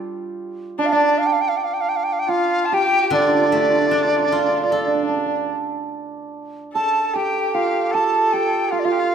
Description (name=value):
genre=chinese traditional, Chinese chamber ensemble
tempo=76 BPM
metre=4/4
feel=rubato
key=D yu mode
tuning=A4 = 440 Hz
part: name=hammered dulcimer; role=second line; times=0.0-9.1 s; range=D4 to A4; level=-22 LUFS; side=right 6 dB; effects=none
part: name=steel-string zither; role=accompaniment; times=0.0-6.3 s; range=D3 to D5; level=-26 LUFS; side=left 1 dB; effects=none
part: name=mellow hollow dizi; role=melody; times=0.8-9.1 s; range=D5 to A5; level=-20 LUFS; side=equal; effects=none
part: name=clear erhu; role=second line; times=0.8-9.1 s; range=D4 to A4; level=-25 LUFS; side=left 5 dB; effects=none
room=wet recital hall reverb, RT60 1.5 s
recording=minimal, uncompressed stereo recording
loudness=-17 LUFS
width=side -8 dB against mid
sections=0.0-6.3 A section; 6.3-9.1 B section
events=none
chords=none